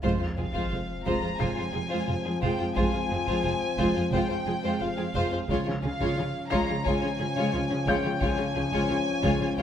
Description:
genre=cinematic, suspense film score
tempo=88 BPM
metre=4/4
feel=straight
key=F minor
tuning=A4 = 440 Hz
part: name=warm chamber violin section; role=second line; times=0.0-9.6 s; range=C4 to Db5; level=-33 LUFS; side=left 2 dB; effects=none
part: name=dark chamber viola section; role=accompaniment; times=0.0-9.6 s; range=Ab3 to F4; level=-31 LUFS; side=right 1 dB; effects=none
part: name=warm French horn section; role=sustained chords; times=0.0-9.6 s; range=F3 to Db4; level=-33 LUFS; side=left 4 dB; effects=none
part: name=dark chamber cello section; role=bass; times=0.0-9.6 s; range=F2 to Db3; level=-34 LUFS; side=right 2 dB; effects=none
part: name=rich symphonic double bass section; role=bass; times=0.0-9.6 s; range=F1 to Db2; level=-35 LUFS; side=right 2 dB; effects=none
part: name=taiko ensemble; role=drums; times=0.0-9.6 s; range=none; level=-35 LUFS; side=equal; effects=none
part: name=sub drop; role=sound effects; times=0.0-2.8 s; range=none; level=-37 LUFS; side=equal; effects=none
part: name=felt-muted upright piano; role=texture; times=0.0-9.6 s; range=F5 to C7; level=-38 LUFS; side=left 3 dB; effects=none
part: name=warm chamber violin section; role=melody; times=0.4-9.6 s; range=F5 to Bb5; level=-33 LUFS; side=left 2 dB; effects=none
room=moderate concert hall reverb, RT60 2.1 s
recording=none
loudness=-25 LUFS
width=side -9 dB against mid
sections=0.0-9.6 A section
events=impact 0.0-2.8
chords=0.0 Fm; 5.5 Db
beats=| 0.03 0.71 1.39 2.07 | 2.75 3.44 4.12 4.80 | 5.48 6.16 6.85 7.53 | 8.21 8.89 9.57

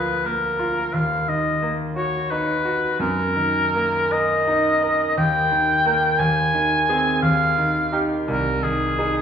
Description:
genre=classical, romantic duo for oboe and grand piano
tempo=58 BPM (dotted quarters)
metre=6/8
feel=rubato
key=Eb minor, Eb major from 5.2 s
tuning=A4 = 439 Hz
part: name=clear oboe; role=melody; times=0.0-9.2 s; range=Ab4 to Ab5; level=-20 LUFS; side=equal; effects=none
part: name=bright concert grand piano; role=accompaniment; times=0.0-9.2 s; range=C2 to Bb4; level=-23 LUFS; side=right 1 dB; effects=none
room=wet recital hall reverb, RT60 1.5 s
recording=heard from further back in the room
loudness=-18 LUFS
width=side -8 dB against mid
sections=0.0-9.2 A section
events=none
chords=0.0 Bb/D; 0.9 Ebm; 3.0 Ebm/Gb; 5.2 Eb; 6.2 Ab/Eb; 7.2 Eb; 8.3 Ab/C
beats=| 0.94 1.96 | 3.00 4.12 | 5.17 6.19 | 7.23 8.29

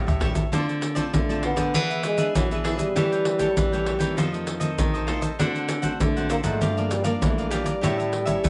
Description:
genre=samba and choro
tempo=98 BPM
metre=4/4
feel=straight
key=D minor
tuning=A4 = 440 Hz
part: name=cavaquinho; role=accompaniment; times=0.0-8.5 s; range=D4 to G5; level=-34 LUFS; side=equal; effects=none
part: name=nylon-string guitar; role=accompaniment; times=0.0-8.5 s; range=F2 to G#4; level=-35 LUFS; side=equal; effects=none
part: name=nylon-string guitar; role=bass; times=0.0-8.5 s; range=G2 to A3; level=-31 LUFS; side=equal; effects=none
part: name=surdo, egg shaker and pandeiro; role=percussion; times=0.1-8.5 s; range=none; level=-28 LUFS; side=equal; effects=none
part: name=breathy trombone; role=melody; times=1.1-8.5 s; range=E3 to B3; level=-28 LUFS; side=equal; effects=none
room=moderate studio reverb, RT60 0.6 s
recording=nothing above 10.6 kHz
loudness=-24 LUFS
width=mono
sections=0.0-8.5 A section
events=drum fill 0.0-0.5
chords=0.0 A7; 0.5 Dm7; 1.7 E7; 3.0 A7/E; 4.2 F7; 5.4 D7; 6.6 Gm7; 7.8 A7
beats=| 0.53 1.14 1.74 2.35 | 2.96 3.57 4.18 4.79 | 5.40 6.01 6.62 7.22 | 7.83 8.44

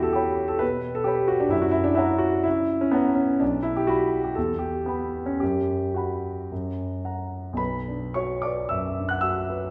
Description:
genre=classical, romantic character piece for solo piano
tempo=102-134 BPM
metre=4/4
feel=rubato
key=B minor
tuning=A4 = 440 Hz
part: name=warm concert grand piano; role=solo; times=0.0-9.7 s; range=B1 to F#6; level=-25 LUFS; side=equal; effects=none
room=wet recital hall reverb, RT60 1.6 s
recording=heard from further back in the room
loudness=-25 LUFS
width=mono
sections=0.0-7.6 A section; 7.6-9.7 B section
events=none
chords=0.0 C#m7b5/E; 1.5 F#; 3.4 B5; 4.4 Em; 5.4 B5/F#; 6.5 F#; 7.6 Bm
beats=0.14 0.61 1.07 | 1.52 1.98 2.45 2.94 | 3.42 3.88 4.37 4.88 | 5.41 5.96 6.51 7.05 | 7.59 8.17 8.71 9.23

